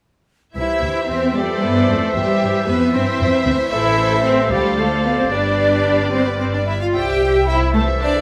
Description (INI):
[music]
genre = quick classical-period movement for symphony orchestra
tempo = 75 BPM (dotted quarters)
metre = 6/8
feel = straight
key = C major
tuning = A4 = 442 Hz
[part]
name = clear French horn section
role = sustained chords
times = 0.5-8.2 s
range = B4 to F5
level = -31 LUFS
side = equal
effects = none
[part]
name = warm chamber cello section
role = bass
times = 0.5-8.2 s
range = G3 to G4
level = -22 LUFS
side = equal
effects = none
[part]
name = rich chamber violin section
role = melody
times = 0.6-8.2 s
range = D5 to A5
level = -31 LUFS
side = equal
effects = none
[part]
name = clear oboe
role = second line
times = 0.6-8.2 s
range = D5 to E5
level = -28 LUFS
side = equal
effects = none
[part]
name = large flute ensemble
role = second line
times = 0.6-8.1 s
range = G4 to G5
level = -29 LUFS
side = equal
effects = none
[part]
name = rich chamber violin section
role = second line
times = 0.6-8.2 s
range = G4 to G5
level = -30 LUFS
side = equal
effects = none
[part]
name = warm clarinet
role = second line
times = 0.6-8.2 s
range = B4 to C5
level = -30 LUFS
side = equal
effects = none
[part]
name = mellow bassoon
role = accompaniment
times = 0.6-8.2 s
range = E3 to G3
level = -30 LUFS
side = equal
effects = none
[part]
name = rich chamber viola section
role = accompaniment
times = 0.6-8.2 s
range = E4 to E5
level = -29 LUFS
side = equal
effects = none
[part]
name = warm chamber double bass section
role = bass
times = 0.6-8.2 s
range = G1 to G2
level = -25 LUFS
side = equal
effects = none
[sound]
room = light reverb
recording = close, detailed microphones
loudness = -17 LUFS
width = mono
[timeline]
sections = 0.6-8.2 A section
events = none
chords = 0.6 C; 2.1 C/E; 3.7 Am; 4.5 Dm7; 5.3 G; 6.9 C